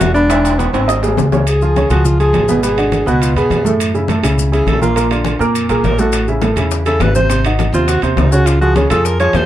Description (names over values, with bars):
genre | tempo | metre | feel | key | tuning
Afro-Cuban jazz | 206 BPM | 4/4 | straight | unclear | A4 = 440 Hz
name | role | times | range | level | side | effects
warm alto saxophone | melody | 0.0-9.5 s | Bb3 to Db5 | -17 LUFS | equal | plate reverb
warm baby grand piano | accompaniment | 0.0-9.4 s | A2 to D#6 | -17 LUFS | right 2 dB | none
upright bass | bass | 0.0-9.5 s | E1 to Gb2 | -16 LUFS | equal | none
bongos | percussion | 0.0-1.4, 6.1-9.5 s | none | -24 LUFS | left 7 dB | none
congas | percussion | 0.0-9.5 s | none | -23 LUFS | left 2 dB | none
maracas | percussion | 0.0-9.5 s | none | -30 LUFS | left 9 dB | none
timbales | percussion | 0.0-9.5 s | none | -23 LUFS | right 2 dB | none
room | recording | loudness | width
light reverb | dark, warm production | -11 LUFS | side -12 dB against mid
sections
0.0-1.5 A section; 1.5-9.5 B section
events
drum fill 0.3-1.5; alto saxophone solo 1.5-9.5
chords
0.3 E7; 0.9 G#; 1.5 Db; 2.6 Abm7b5; 3.2 Db7; 3.8 Gbm7; 5.0 Bb; 6.1 A; 7.3 Ab7; 8.5 Db